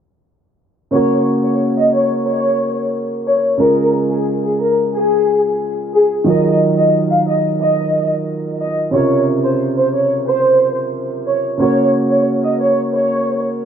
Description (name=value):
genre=dancehall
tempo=90 BPM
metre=4/4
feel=straight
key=unclear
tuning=A4 = 440 Hz
part: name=warm studio violin section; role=melody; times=0.9-13.4 s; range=Ab4 to F5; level=-15 LUFS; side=equal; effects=digital delay
part: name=warm grand piano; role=accompaniment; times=0.9-13.7 s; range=C3 to Bb4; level=-17 LUFS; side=right 2 dB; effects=none
room=moderate lush hall reverb, RT60 2.4 s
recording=dark, warm production, low-pass filter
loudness=-13 LUFS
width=side -8 dB against mid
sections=0.9-13.7 A section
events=filter sweep 0.9-13.7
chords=0.9 Gb; 3.6 Db; 6.3 Ebmadd9; 8.9 Bbmadd9; 11.6 Gb